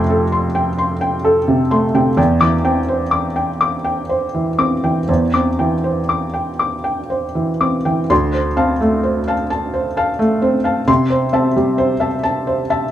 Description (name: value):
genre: neoclassical minimalist piano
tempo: 39-44 BPM (dotted quarters)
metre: 6/8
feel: rubato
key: C major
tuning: A4 = 439 Hz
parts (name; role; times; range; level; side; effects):
- felt-muted upright piano; solo; 0.0-12.9 s; D2 to D6; -14 LUFS; equal; none
room: moderate studio reverb, RT60 0.6 s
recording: band playing live in one room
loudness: -14 LUFS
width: side -12 dB against mid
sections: 0.0-8.1 A section; 8.1-12.9 B section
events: none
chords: 0.0 Fadd9; 2.2 Cadd9/E; 8.1 Dm7; 10.9 C6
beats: 0.78 | 2.17 3.59 | 5.08 6.58 | 8.10 9.51 | 10.88 12.24